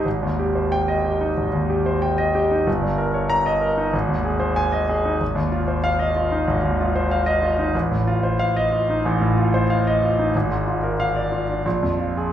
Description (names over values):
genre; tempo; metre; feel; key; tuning
classical, romantic character piece for solo piano; 93 BPM; 4/4; rubato; unclear; A4 = 440 Hz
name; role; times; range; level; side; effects
clear concert grand piano; solo; 0.0-12.3 s; G1 to Bb5; -18 LUFS; equal; none
room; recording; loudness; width
wet recital hall reverb, RT60 1.2 s; recorded in a church or concert hall; -18 LUFS; side -10 dB against mid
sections
0.0-12.3 A section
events
none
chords
0.1 Abmaj7; 2.7 Eb7/G; 3.9 Ab; 5.2 Fm7/Ab; 7.7 F7/A; 10.3 Bb7/Ab; 11.6 Bb7(no3)